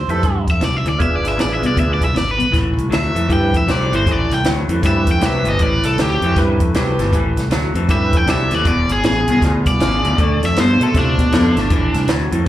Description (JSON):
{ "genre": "electric blues shuffle", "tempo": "157 BPM", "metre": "4/4", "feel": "swing 63% on 8ths", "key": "A minor", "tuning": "A4 = 441 Hz", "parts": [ { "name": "electric guitar through a small old amp", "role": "riff", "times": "0.0-12.5 s", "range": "E2 to B3", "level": "-20 LUFS", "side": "left 1 dB", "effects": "lush chorus" }, { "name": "fingered electric bass", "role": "bass", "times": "0.0-12.5 s", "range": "E1 to C3", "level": "-19 LUFS", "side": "equal", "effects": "none" }, { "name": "percussive tonewheel organ", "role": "accompaniment", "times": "0.1-2.1 s", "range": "C4 to B4", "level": "-23 LUFS", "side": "right 2 dB", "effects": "slow rotary speaker, overdrive, chorus vibrato, slapback echo" }, { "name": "compact cocktail drum kit", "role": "drums", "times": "0.1-12.5 s", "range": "hi-hat, kick drum, snare drum", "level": "-20 LUFS", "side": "equal", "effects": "none" }, { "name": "overdriven electric guitar", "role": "melody", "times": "0.5-12.1 s", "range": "D4 to G5", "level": "-20 LUFS", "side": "equal", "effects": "slapback echo" }, { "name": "warm horn section", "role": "stabs", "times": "3.3-12.5 s", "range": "C4 to D5", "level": "-26 LUFS", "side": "right 1 dB", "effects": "slapback echo, tape echo" } ], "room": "small room ambience", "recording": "live gig heard through the venue's PA, club reverb", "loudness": "-14 LUFS", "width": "side -13 dB against mid", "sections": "0.0-2.5 A section; 2.5-12.5 B section", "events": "overdriven electric guitar solo 2.5-12.5", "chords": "0.0 Am9; 1.0 E7b9; 2.5 Am9; 8.7 E7b9; 10.2 Dm9; 11.7 Am" }